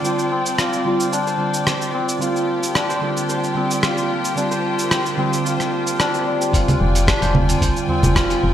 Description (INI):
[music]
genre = organic downtempo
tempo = 111 BPM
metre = 4/4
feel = straight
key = unclear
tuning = A4 = 435 Hz
[part]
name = muted felt-like synth keys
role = accompaniment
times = 0.0-8.5 s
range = D3 to F4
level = -23 LUFS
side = right 2 dB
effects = chorus, phaser, vintage 12-bit sampler grit, sidechain pumping, digital delay, shimmer reverb
[part]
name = rich symphonic string section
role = sustained chords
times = 0.0-8.5 s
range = Bb3 to Ab5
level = -26 LUFS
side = left 2 dB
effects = sidechain pumping, low-pass filter, shimmer reverb
[part]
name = santur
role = arpeggios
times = 0.0-8.5 s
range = C4 to C5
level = -23 LUFS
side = left 2 dB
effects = digital delay, shimmer reverb
[part]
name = dusty soul sampler-style drum kit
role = drums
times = 0.0-8.4 s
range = congas, hi-hat, rim click, shaker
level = -22 LUFS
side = right 1 dB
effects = gated reverb
[part]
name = drifting glass-harmonics texture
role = texture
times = 0.0-6.5 s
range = D5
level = -36 LUFS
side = right 3 dB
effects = none
[part]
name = electronic kick drum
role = drums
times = 6.5-8.3 s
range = none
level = -21 LUFS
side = equal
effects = none
[part]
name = woody FM bass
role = bass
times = 6.8-8.5 s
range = F1 to C2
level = -20 LUFS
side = equal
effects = tube saturation, sidechain pumping
[part]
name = tabla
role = percussion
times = 7.0-8.5 s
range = none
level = -29 LUFS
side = equal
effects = none
[sound]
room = wet lush hall reverb, RT60 1.7 s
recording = bright 1980s-style digital production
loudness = -17 LUFS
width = side -10 dB against mid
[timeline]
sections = 0.0-6.5 A section; 6.5-8.5 B section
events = none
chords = 0.0 Fsus2; 2.2 Gm7; 6.5 Fm69